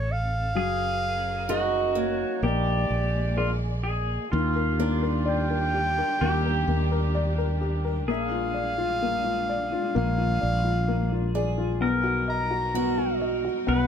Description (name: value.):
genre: acoustic folk-pop ballad.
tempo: 64 BPM.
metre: 4/4.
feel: straight.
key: Eb major from 4.3 s.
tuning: A4 = 440 Hz.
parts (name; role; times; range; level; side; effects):
mellow clarinet; melody; 0.0-13.9 s; C#5 to A#5; -29 LUFS; right 1 dB; none.
pedal steel guitar; second line; 0.0-13.9 s; F4 to B4; -32 LUFS; equal; none.
warm baby grand piano; accompaniment; 0.0-13.9 s; Eb3 to F5; -29 LUFS; left 6 dB; none.
warm symphonic string section; sustained chords; 0.0-13.9 s; Eb3 to D5; -37 LUFS; right 1 dB; none.
mellow fretless electric bass; bass; 0.0-13.9 s; Gb1 to Eb2; -27 LUFS; right 1 dB; none.
picked old ladder-braced acoustic guitar; arpeggios; 1.5-13.9 s; Bb3 to Ab4; -31 LUFS; right 7 dB; none.
room: light reverb.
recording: close, detailed microphones.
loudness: -23 LUFS.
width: side -8 dB against mid.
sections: 0.0-4.3 A section; 4.3-13.9 A section.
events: none.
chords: 0.0 A; 0.6 Gbmaj9; 2.4 Bb7; 4.3 Ebmaj7; 8.1 Bb7; 11.8 Bmaj7.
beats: | 0.56 1.49 2.43 3.38 | 4.33 5.27 6.22 7.16 | 8.09 9.03 9.96 10.89 | 11.82 12.75 13.69.